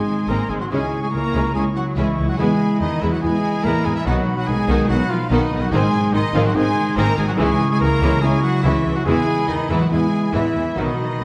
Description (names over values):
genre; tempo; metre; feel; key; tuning
cinematic; 143 BPM; 4/4; straight; unclear; A4 = 438 Hz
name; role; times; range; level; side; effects
rich symphonic violin section; melody; 0.0-11.2 s; Eb5 to Bb5; -32 LUFS; equal; none
bright silver concert flute; second line; 0.0-11.2 s; B5 to Db6; -33 LUFS; equal; none
dark clarinet; second line; 0.0-11.2 s; Eb4 to F#4; -30 LUFS; equal; none
dark French horn section; sustained chords; 0.0-11.2 s; B3 to F#4; -31 LUFS; equal; none
concert harp; arpeggios; 0.0-11.2 s; Ab2 to C5; -28 LUFS; equal; none
clear trumpet; stabs; 0.0-11.2 s; Eb4 to Bb4; -28 LUFS; equal; none
clear studio cello section; bass; 0.0-11.2 s; Eb3 to Bb3; -26 LUFS; equal; none
clear symphonic violin section; second line; 0.3-11.2 s; Ab3 to Ab4; -34 LUFS; equal; none
clear symphonic viola section; accompaniment; 0.3-11.2 s; D#3 to Db4; -28 LUFS; equal; none
clear symphonic double bass section; bass; 0.3-11.2 s; Ab1 to E2; -26 LUFS; equal; none
room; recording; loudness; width
wet scoring stage reverb, RT60 1.5 s; dark, warm production; -19 LUFS; mono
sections
0.0-11.2 A section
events
none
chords
0.0 Ab; 0.7 Dbm; 2.4 E; 4.1 B; 5.7 Ab; 7.4 Dbm; 9.1 E